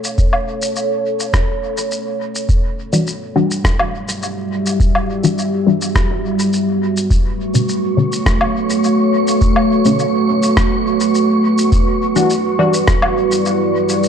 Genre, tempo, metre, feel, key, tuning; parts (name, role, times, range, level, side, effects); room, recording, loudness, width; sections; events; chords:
ambient dub; 104 BPM; 4/4; straight; E dorian; A4 = 440 Hz
deep dark ambient pad; sustained chords; 0.0-14.1 s; G3 to F#5; -17 LUFS; right 1 dB; chorus, built-in reverb
electronic shaker, woodblock and rim click; drums; 0.0-14.1 s; -21 LUFS; left 1 dB; overdrive, studio reverb, dub echo
electronic kick drum; drums; 0.2-13.0 s; -16 LUFS; equal; studio reverb
filtered dub chord stab; stabs; 2.9-14.1 s; B2 to F#4; -17 LUFS; left 2 dB; phaser, analog chorus, dub echo
wind-like tuned noise texture; texture; 7.6-14.1 s; C#6; -24 LUFS; right 1 dB; built-in reverb
light reverb, digital ambience; dark, warm production; -14 LUFS; side -8 dB against mid
0.0-14.1 A section
0.0 Bsus2; 2.5 Em9; 7.1 Bm9; 11.7 Em9